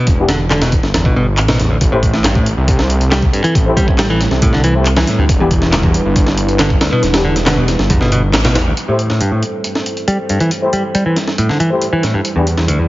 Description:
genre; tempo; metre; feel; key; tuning
breakbeat, breaks; 138 BPM; 4/4; straight; A minor; A4 = 440 Hz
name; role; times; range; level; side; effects
modern bright picked electric bass; riff; 0.0-12.9 s; D2 to G3; -16 LUFS; equal; vintage 12-bit sampler grit, low-pass filter, tape echo
detuned saw bass; bass; 0.1-8.7 s; E1 to D2; -16 LUFS; equal; none
breakbeat sampler-style drum kit; drums; 0.1-12.8 s; hi-hat, kick drum, snare drum; -16 LUFS; equal; high-pass filter on hats, high-pass filter on snare, high-pass filter on kick
dark brass ensemble; stabs; 0.2-12.4 s; E3 to C5; -21 LUFS; left 2 dB; low-pass filter, tape echo
electronic handclaps and tambourine; drums; 0.5-12.9 s; none; -24 LUFS; equal; low-pass filter on snare, low-pass filter on perc
dark analog pad; sustained chords; 1.8-12.9 s; G3 to D5; -22 LUFS; right 1 dB; chorus, vintage 12-bit sampler grit, sidechain pumping
room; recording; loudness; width
light reverb, digital ambience; heavily compressed radio sound, multiband compression, nothing above 7.5 kHz; -11 LUFS; side -17 dB against mid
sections
0.0-8.8 A section; 8.8-12.9 B section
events
band accent 8.3; filter sweep on picked electric bass 8.8-12.9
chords
0.0 Em7; 1.8 Am7; 5.3 Em7; 8.8 Am7; 12.2 Em7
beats
| 0.07 0.51 0.94 1.38 | 1.81 2.25 2.68 3.12 | 3.55 3.99 4.42 4.86 | 5.29 5.73 6.16 6.60 | 7.03 7.47 7.90 8.34 | 8.77 9.21 9.64 10.07 | 10.51 10.95 11.38 11.81 | 12.25 12.68

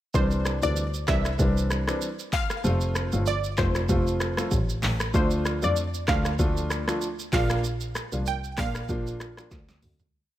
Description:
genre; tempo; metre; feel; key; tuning
afrobeats; 96 BPM; 4/4; swing 55% on 16ths; unclear; A4 = 441 Hz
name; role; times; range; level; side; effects
warm baby grand piano; accompaniment; 0.1-9.6 s; E3 to F4; -30 LUFS; equal; none
muted double bass; bass; 0.1-10.1 s; F1 to F2; -27 LUFS; equal; none
deep house drum kit; drums; 0.1-10.1 s; finger snaps, handclaps, hi-hat, kick drum, rim click, shaker, snare drum, toms; -28 LUFS; equal; none
analog pluck; melody; 0.2-9.8 s; C5 to G5; -31 LUFS; right 1 dB; chorus, digital delay
room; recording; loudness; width
digital ambience; none; -23 LUFS; side -13 dB against mid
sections
0.1-10.1 chorus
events
fade-out 7.6-10.1; drum fill 9.5-10.1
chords
0.1 Cadd9; 2.6 F; 5.1 Dm; 7.3 Bb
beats
| 0.14 0.77 1.39 2.02 | 2.64 3.27 3.89 4.52 | 5.14 5.77 6.39 7.02 | 7.64 8.27 8.89 9.52

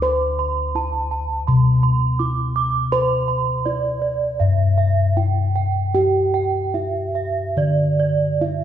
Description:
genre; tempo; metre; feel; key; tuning
Javanese gamelan; 70-83 BPM; 4/4; straight; D slendro; A4 = 440 Hz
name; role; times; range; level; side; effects
gamelan-type bronze metallophone; arpeggios; 0.0-8.6 s; D5 to D6; -22 LUFS; right 6 dB; none
gamelan-type bossed gongs; bass; 0.0-8.6 s; D2 to C5-45c; -19 LUFS; left 2 dB; none
room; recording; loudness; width
moderate scoring stage reverb, RT60 1.7 s; recorded in a church or concert hall; -17 LUFS; side -10 dB against mid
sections
0.0-8.6 A section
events
none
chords
none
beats
| 0.03 0.75 1.48 2.20 | 2.92 3.65 4.40 5.17 | 5.95 6.75 7.58 8.43

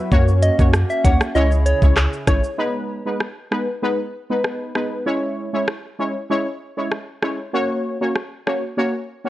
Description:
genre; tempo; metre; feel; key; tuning
dancehall; 97 BPM; 4/4; straight; C# dorian; A4 = 440 Hz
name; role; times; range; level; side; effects
synth brass stab; accompaniment; 0.0-9.3 s; G#3 to C#5; -22 LUFS; equal; chorus
hollow soft pad; sustained chords; 0.0-2.6 s; C#3 to G#4; -30 LUFS; left 1 dB; chorus, sidechain pumping
saturated sub bass; bass; 0.1-2.4 s; G#1 to F#2; -18 LUFS; equal; none
island pop drum kit; drums; 0.1-8.6 s; handclaps, hi-hat, kick drum, rim click, shaker; -18 LUFS; equal; none
soft struck synth lead; melody; 0.4-2.4 s; C#5 to F#5; -23 LUFS; right 1 dB; chorus, digital delay
bongos; percussion; 1.0-2.4 s; none; -31 LUFS; right 4 dB; none
room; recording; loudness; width
light reverb, digital ambience; worn, warbling old tape, cassette tape, warbly pitch drift, nothing above 11.0 kHz; -18 LUFS; side -15 dB against mid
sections
0.0-2.6 A section; 2.6-9.3 B section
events
break 2.6-9.3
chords
0.1 F#; 1.4 C#m; 2.6 G#m; 5.1 C#m; 7.5 F#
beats
| 0.11 0.73 1.35 1.97 | 2.59 3.21 3.83 4.44 | 5.06 5.68 6.30 6.92 | 7.54 8.16 8.77

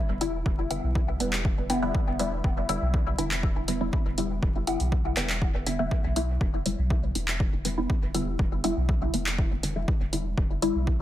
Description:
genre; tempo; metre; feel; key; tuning
dub techno; 121 BPM; 4/4; straight; unclear; A4 = 442 Hz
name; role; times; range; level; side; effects
soft dub sub bass; bass; 0.1-11.0 s; E1 to B1; -30 LUFS; equal; sidechain pumping
filtered dub chord stab; stabs; 0.2-10.9 s; D3 to E4; -29 LUFS; left 1 dB; phaser, vintage 12-bit sampler grit, sidechain pumping, dub echo
punchy analog drum machine; drums; 0.2-10.7 s; handclaps, hi-hat; -32 LUFS; equal; overdrive, dub echo
electronic kick drum; drums; 0.5-11.0 s; none; -26 LUFS; equal; overdrive
room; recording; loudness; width
light reverb, digital ambience; dense, heavily limited modern master, vinyl crackle; -24 LUFS; side -13 dB against mid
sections
0.0-11.0 A section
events
filter sweep on synth stab 0.0-11.0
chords
0.0 Em7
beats
| 0.46 0.95 1.45 1.95 | 2.44 2.94 3.43 3.93 | 4.43 4.92 5.42 5.91 | 6.41 6.91 7.40 7.90 | 8.39 8.89 9.38 9.88 | 10.38 10.87

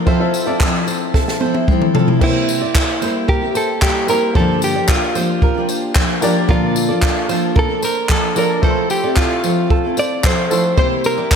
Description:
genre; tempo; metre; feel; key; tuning
acoustic pop; 112 BPM; 4/4; straight; F major; A4 = 439 Hz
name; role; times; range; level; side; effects
clear upright piano; accompaniment; 0.0-11.4 s; A3 to E5; -25 LUFS; left 4 dB; slapback echo
fingerpicked steel-string acoustic guitar; accompaniment; 0.0-11.4 s; G2 to A4; -20 LUFS; equal; double-tracked left and right
flamenco guitar; arpeggios; 0.1-11.4 s; A4 to D5; -25 LUFS; right 6 dB; slapback echo
compact cocktail drum kit; drums; 0.1-11.4 s; crash cymbal, handclaps, kick drum, snare drum, tambourine, toms; -17 LUFS; equal; none
vibraphone with medium hard mallets; second line; 1.5-2.3 s; A3 to E5; -23 LUFS; left 2 dB; slapback echo
direct-recorded clean electric guitar; melody; 2.2-11.4 s; E4 to D5; -19 LUFS; right 1 dB; slapback echo, ping-pong delay
room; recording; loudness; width
moderate lush hall reverb, RT60 1.8 s, small room ambience; big arena sound; -14 LUFS; side -6 dB against mid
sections
0.0-2.2 A section; 2.2-11.4 B section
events
drum fill 1.1-2.2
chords
0.1 Fmaj7; 2.2 C7; 4.4 Gm7; 6.5 Bbmaj7; 8.6 Fmaj7; 10.8 C7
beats
| 0.07 0.61 1.14 1.68 | 2.21 2.75 3.29 3.82 | 4.36 4.89 5.42 5.96 | 6.49 7.03 7.56 8.10 | 8.63 9.17 9.70 10.24 | 10.78 11.31

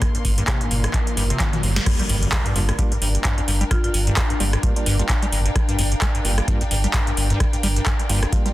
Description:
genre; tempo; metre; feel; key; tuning
acid house; 130 BPM; 4/4; swing 57% on 16ths; G minor; A4 = 442 Hz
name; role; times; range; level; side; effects
warbly tape-like pad; sustained chords; 0.0-8.5 s; Bb3 to D5; -32 LUFS; left 2 dB; chorus, built-in reverb, phaser, sidechain pumping
liquid acid bass; riff; 0.0-8.5 s; F2 to G3; -27 LUFS; equal; chorus, sidechain pumping
booming analog drum machine; drums; 0.0-8.5 s; crash cymbal, handclaps, hi-hat, rim click, snare drum, toms; -24 LUFS; equal; overdrive
electronic kick drum; drums; 0.0-8.4 s; none; -22 LUFS; equal; overdrive
riser and impact; sound effects; 0.1-3.7 s; none; -32 LUFS; equal; none
dark studio string section; texture; 0.0-8.5 s; D4 to C6; -33 LUFS; left 2 dB; sidechain pumping
round analog bass; bass; 0.2-8.3 s; G1; -21 LUFS; equal; sidechain pumping
percussive organ stab; stabs; 2.6-8.5 s; G3 to F4; -32 LUFS; right 4 dB; chorus, tape echo
buzzing marimba with medium hard mallets; melody; 3.7-3.9 s; F4; -31 LUFS; left 1 dB; analog delay
room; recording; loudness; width
light reverb; dense, heavily limited modern master; -18 LUFS; side -16 dB against mid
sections
0.0-1.9 A section; 1.9-8.5 B section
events
riser 0.1-1.9; drum fill 1.4-1.9; band accent 1.7; drop 1.9-8.5; impact 1.9-3.7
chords
0.0 Gm7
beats
| 0.02 0.48 0.94 1.40 | 1.86 2.33 2.79 3.25 | 3.71 4.17 4.63 5.09 | 5.56 6.02 6.48 6.94 | 7.40 7.86 8.32

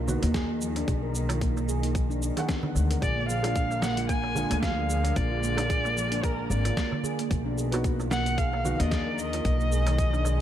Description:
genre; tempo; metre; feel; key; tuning
organic downtempo; 112 BPM; 4/4; swing 56% on 16ths; unclear; A4 = 440 Hz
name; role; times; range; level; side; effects
muted studio string section; sustained chords; 0.0-10.4 s; D3 to Bb3; -38 LUFS; equal; sidechain pumping
handpan; arpeggios; 0.0-10.4 s; F3 to Bb4; -32 LUFS; right 2 dB; ping-pong delay
upright bass; bass; 0.0-10.4 s; Ab1 to D#2; -28 LUFS; left 1 dB; sidechain pumping
felt-muted upright piano; accompaniment; 0.1-10.4 s; D#3 to F#5; -36 LUFS; right 1 dB; sidechain pumping, ping-pong delay
dusty soul sampler-style drum kit; drums; 0.1-10.4 s; cabasa, hi-hat, snare drum; -35 LUFS; equal; none
darbuka; percussion; 0.1-10.4 s; none; -37 LUFS; right 3 dB; none
electronic kick drum; drums; 0.3-10.1 s; none; -29 LUFS; left 1 dB; none
warm kamancheh; melody; 3.0-10.4 s; Bb4 to Ab5; -30 LUFS; equal; ping-pong delay
room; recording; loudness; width
light reverb; none; -24 LUFS; side -11 dB against mid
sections
0.0-10.4 A section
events
none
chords
0.0 B; 3.0 Bb7; 7.3 B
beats
0.34 | 0.88 1.41 1.95 2.48 | 3.02 3.56 4.09 4.63 | 5.16 5.70 6.24 6.77 | 7.31 7.84 8.38 8.91 | 9.45 9.98

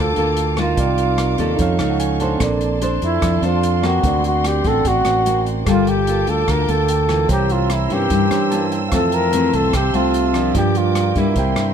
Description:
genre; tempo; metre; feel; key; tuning
bossa nova; 147 BPM; 4/4; straight; F major; A4 = 442 Hz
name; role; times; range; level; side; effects
breathy flugelhorn; melody; 0.0-11.7 s; E4 to Bb4; -20 LUFS; right 1 dB; none
nylon-string guitar; accompaniment; 0.0-11.7 s; F2 to C5; -21 LUFS; left 3 dB; none
tine electric piano; accompaniment; 0.0-11.7 s; C4 to C6; -26 LUFS; right 7 dB; none
warm symphonic string section; sustained chords; 0.0-11.7 s; A4 to E6; -28 LUFS; equal; none
fingered electric bass; bass; 0.0-11.7 s; G1 to G2; -21 LUFS; right 1 dB; none
open jazz drum kit; drums; 0.2-11.7 s; hi-hat, kick drum, rim click; -25 LUFS; equal; none
room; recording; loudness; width
light reverb; none; -15 LUFS; side -8 dB against mid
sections
0.0-11.7 A section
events
tine electric piano fill 1.6-2.4, 8.3-8.9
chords
0.0 Gm9; 0.8 Cm11; 1.6 F7b13; 2.4 Bbmaj9; 4.0 D7b13; 5.7 Gm9; 7.3 C7b9; 8.9 Fmaj7; 10.6 Gm7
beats
0.37 | 0.78 1.19 1.59 2.00 | 2.41 2.82 3.23 3.63 | 4.04 4.45 4.85 5.26 | 5.67 6.08 6.48 6.89 | 7.30 7.70 8.11 8.52 | 8.93 9.33 9.74 10.14 | 10.55 10.96 11.36

